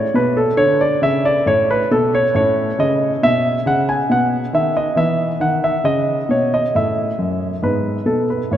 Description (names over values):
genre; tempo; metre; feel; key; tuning
classical, baroque-style suite movement for grand piano; 68 BPM; 3/4; rubato; E major; A4 = 439 Hz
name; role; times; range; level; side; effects
warm concert grand piano; solo; 0.0-8.6 s; F#2 to G#5; -15 LUFS; equal; none
room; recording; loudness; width
wet cathedral reverb, RT60 4.7 s; none; -15 LUFS; side -10 dB against mid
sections
0.0-8.6 A section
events
none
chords
0.0 A; 2.3 Aadd9(#11); 4.1 B; 4.9 E5; 7.6 G#m